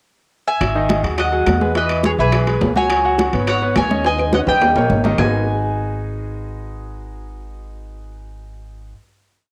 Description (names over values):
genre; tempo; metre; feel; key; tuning
latin, salsa; 210 BPM; 4/4; straight; G# minor; A4 = 440 Hz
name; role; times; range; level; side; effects
mandolin; melody; 0.5-8.9 s; G#4 to G#5; -22 LUFS; equal; cassette tape
upright bass; bass; 0.6-8.9 s; G#1 to E2; -25 LUFS; equal; none
bongos; percussion; 0.6-5.2 s; none; -28 LUFS; equal; none
claves; percussion; 0.6-5.2 s; none; -32 LUFS; equal; none
congas; percussion; 0.6-5.2 s; none; -25 LUFS; equal; none
timbales; percussion; 0.6-5.2 s; none; -26 LUFS; equal; none
clear concert grand piano; accompaniment; 0.8-8.9 s; D#3 to G#5; -24 LUFS; equal; cassette tape, plate reverb
room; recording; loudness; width
moderate booth ambience, RT60 0.2 s; home recording on cassette; -17 LUFS; mono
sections
0.0-0.6 pickup bar; 0.6-5.2 verse; 5.2-7.5 final chord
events
drum fill 4.0-5.2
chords
0.0 N.C.; 0.6 G#7(no3); 1.8 Emaj7; 2.9 C#7sus4; 4.0 D#7sus4; 4.6 D#7; 5.2 G#m7